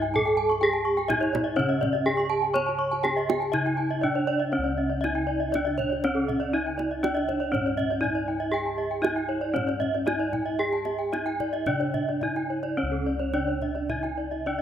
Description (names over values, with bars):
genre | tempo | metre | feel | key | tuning
Balinese gamelan | 107-126 BPM | 4/4 | straight | C# pelog | A4 = 435 Hz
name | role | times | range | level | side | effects
gamelan-type bronze metallophone | melody | 0.0-14.6 s | C#4 to C#5 | -26 LUFS | equal | none
gamelan-type bronze metallophone | arpeggios | 0.0-14.6 s | C#5 to C#6 | -32 LUFS | left 6 dB | none
gamelan-type bronze metallophone | arpeggios | 0.0-14.6 s | A4-20c to C#6 | -32 LUFS | right 7 dB | none
gamelan-type bossed gongs | bass | 0.0-14.6 s | C#2 to C#5 | -34 LUFS | equal | none
kendang | percussion | 0.0-14.4 s | none | -34 LUFS | right 4 dB | none
room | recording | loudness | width
moderate lush hall reverb, RT60 2.3 s | rough home demo mix | -24 LUFS | side -9 dB against mid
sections
0.0-4.5 A section; 4.5-12.8 B section; 12.8-14.6 C section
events
none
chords
none